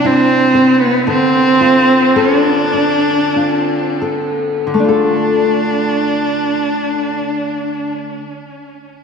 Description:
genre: celtic folk, Celtic slow air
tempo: 39-61 BPM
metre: 3/4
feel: rubato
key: D minor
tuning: A4 = 439 Hz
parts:
  - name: rich cello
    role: melody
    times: 0.0-7.9 s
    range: B3 to D4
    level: -13 LUFS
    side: right 1 dB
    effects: ping-pong delay
  - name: nylon-string guitar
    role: accompaniment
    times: 0.0-8.4 s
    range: C3 to C5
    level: -17 LUFS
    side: left 2 dB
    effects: analog chorus
room: wet lush hall reverb, RT60 2.6 s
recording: dreamy mix soaked in reverb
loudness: -12 LUFS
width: side -6 dB against mid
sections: 0.0-4.7 A section; 4.7-9.0 B section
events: slowing down 0.0-4.7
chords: 0.0 C; 1.1 Dm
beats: 0.04 | 1.06 2.15 3.34 | 4.73 6.22 7.67

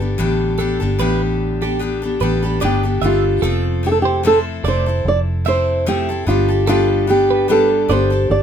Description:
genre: pop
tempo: 74 BPM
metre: 4/4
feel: swing 55% on 16ths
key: unclear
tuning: A4 = 440 Hz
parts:
  - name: picked steel-string acoustic guitar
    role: accompaniment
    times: 0.0-8.4 s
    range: A2 to A4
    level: -20 LUFS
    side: left 4 dB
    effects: none
  - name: vintage muted fingered electric bass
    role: bass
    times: 0.0-8.4 s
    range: F1 to A1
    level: -20 LUFS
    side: equal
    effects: none
  - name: twelve-string electric guitar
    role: arpeggios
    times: 0.6-8.1 s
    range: G4 to E5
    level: -24 LUFS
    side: right 8 dB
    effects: none
  - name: flamenco guitar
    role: melody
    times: 2.6-8.4 s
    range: F4 to D5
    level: -17 LUFS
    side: right 2 dB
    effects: none
room: light reverb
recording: minimal, uncompressed stereo recording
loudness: -14 LUFS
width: side -8 dB against mid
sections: 0.2-3.4 A section; 3.4-8.4 B section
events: none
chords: 0.0 G; 3.4 Fmaj7; 6.3 Gadd9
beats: | 0.18 1.00 1.81 2.62 | 3.43 4.24 5.05 5.86 | 6.67 7.48 8.29

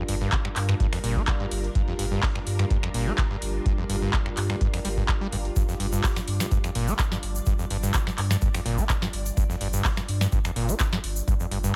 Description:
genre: acid house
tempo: 126 BPM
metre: 4/4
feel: straight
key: G minor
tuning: A4 = 441 Hz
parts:
  - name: string machine, full ensemble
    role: sustained chords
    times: 0.0-11.8 s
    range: G3 to D5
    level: -37 LUFS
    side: equal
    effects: phaser, ensemble chorus, sidechain pumping
  - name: overdriven acid bass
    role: riff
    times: 0.0-11.7 s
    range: G1 to Bb3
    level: -32 LUFS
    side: equal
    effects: distortion, sidechain pumping
  - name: saturated sub bass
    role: bass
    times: 0.1-11.7 s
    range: G1 to G2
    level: -31 LUFS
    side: equal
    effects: sidechain pumping
  - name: booming analog drum machine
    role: drums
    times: 0.1-11.6 s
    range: finger snaps, handclaps, hi-hat, snare drum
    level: -33 LUFS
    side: equal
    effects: none
  - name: dusty soul sampler-style drum kit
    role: drums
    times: 0.1-11.7 s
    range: hi-hat, snare drum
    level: -44 LUFS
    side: equal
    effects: none
  - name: electronic kick drum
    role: drums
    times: 0.3-11.4 s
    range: none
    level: -28 LUFS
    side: equal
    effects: none
  - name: egg shaker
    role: percussion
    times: 5.6-11.7 s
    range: none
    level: -40 LUFS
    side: equal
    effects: none
room: light reverb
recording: none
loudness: -25 LUFS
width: mono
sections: 0.0-11.8 A section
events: none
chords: 0.0 Gm7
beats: 0.32 0.80 1.28 | 1.75 2.23 2.71 3.18 | 3.66 4.13 4.61 5.09 | 5.56 6.04 6.51 6.99 | 7.47 7.94 8.42 8.89 | 9.37 9.85 10.32 10.80 | 11.28 11.75

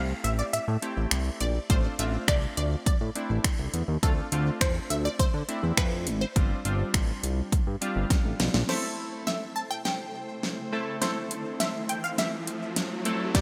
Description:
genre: dance-pop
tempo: 103 BPM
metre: 4/4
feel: straight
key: A minor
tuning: A4 = 441 Hz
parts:
  - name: unison pluck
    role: melody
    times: 0.0-13.4 s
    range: A4 to A5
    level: -36 LUFS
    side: equal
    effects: subtle chorus, digital delay
  - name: chorused retro synth keys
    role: accompaniment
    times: 0.0-13.4 s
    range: G3 to A4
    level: -37 LUFS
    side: equal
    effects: sidechain pumping
  - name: fat analog bass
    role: bass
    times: 0.0-8.6 s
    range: G1 to D3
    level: -31 LUFS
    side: equal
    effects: sidechain pumping
  - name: pop drum kit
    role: drums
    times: 0.2-13.4 s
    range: crash cymbal, finger snaps, hi-hat, kick drum, snare drum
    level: -29 LUFS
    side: equal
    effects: overdrive, gated reverb
  - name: ensemble organ-string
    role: sustained chords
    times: 8.7-13.4 s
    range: G3 to C5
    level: -40 LUFS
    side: equal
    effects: ensemble chorus, sidechain pumping
  - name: riser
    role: sound effects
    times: 10.5-13.4 s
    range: none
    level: -40 LUFS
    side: equal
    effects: none
room: light reverb, digital ambience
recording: bright 1980s-style digital production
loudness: -28 LUFS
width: mono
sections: 0.0-8.7 A section; 8.7-13.4 B section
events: drum fill 8.1-8.7, 8.7-13.4; build-up 8.7-13.4; riser 10.5-13.4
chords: 0.0 Am7; 1.7 F6/A; 4.0 Dm7; 6.4 G7sus4; 8.7 Am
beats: 0.53 1.12 | 1.70 2.28 2.86 3.45 | 4.03 4.61 5.19 5.78 | 6.36 6.94 7.52 8.11 | 8.69 9.27 9.86 10.44 | 11.02 11.60 12.19 12.77 | 13.35

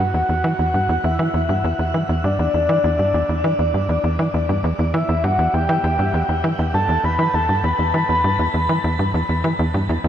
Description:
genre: ambient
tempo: 100 BPM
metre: 4/4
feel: straight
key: E minor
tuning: A4 = 441 Hz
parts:
  - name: soft octave-layered synth lead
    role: melody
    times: 0.0-9.1 s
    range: D5 to B5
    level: -20 LUFS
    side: left 1 dB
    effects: chorus, tape echo
  - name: tight sequencer bass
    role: riff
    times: 0.0-10.1 s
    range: E2 to E3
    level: -19 LUFS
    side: equal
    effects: tape echo
room: wet shimmer reverb, RT60 8.0 s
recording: none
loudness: -17 LUFS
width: side -10 dB against mid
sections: 0.0-10.1 A section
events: none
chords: 0.0 Em7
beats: 0.44 1.04 1.64 | 2.24 2.84 3.44 4.04 | 4.64 5.24 5.84 6.44 | 7.04 7.64 8.24 8.84 | 9.44 10.04

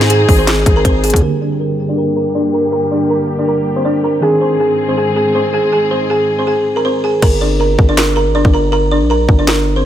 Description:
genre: hip hop, trap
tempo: 160 BPM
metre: 4/4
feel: half-time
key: G phrygian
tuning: A4 = 443 Hz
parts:
  - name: buzzing kalimba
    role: melody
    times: 0.0-9.8 s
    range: C4 to Bb5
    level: -14 LUFS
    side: right 1 dB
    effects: low-pass filter
  - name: soft electric-piano-like synth keys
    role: accompaniment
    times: 0.0-7.2 s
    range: D3 to Ab4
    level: -23 LUFS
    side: right 3 dB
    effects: chorus, tremolo, low-pass filter
  - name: dark studio string section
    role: sustained chords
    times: 0.0-7.2 s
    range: G2 to Ab4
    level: -20 LUFS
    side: left 3 dB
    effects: low-pass filter
  - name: distorted 808-style bass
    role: bass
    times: 0.0-1.2, 7.2-9.8 s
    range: G1 to Ab2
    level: -15 LUFS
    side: equal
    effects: distortion
  - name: trap drum kit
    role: drums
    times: 0.0-1.2, 7.2-9.6 s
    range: crash cymbal, handclaps, hi-hat, kick drum, snare drum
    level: -13 LUFS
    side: equal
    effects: none
room: light reverb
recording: none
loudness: -11 LUFS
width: side -11 dB against mid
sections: 0.0-1.2 A section; 1.2-7.2 B section; 7.2-9.9 C section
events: filter sweep 1.2-7.2; hi-hats muted 7.2-9.9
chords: 0.0 Ab; 1.2 Gm; 4.2 Ab; 7.2 Gm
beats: 0.10 0.47 0.85 | 1.22 1.60 1.97 2.35 | 2.72 3.10 3.47 3.85 | 4.22 4.60 4.97 5.35 | 5.72 6.10 6.47 6.85 | 7.22 7.60 7.97 8.35 | 8.72 9.10 9.47

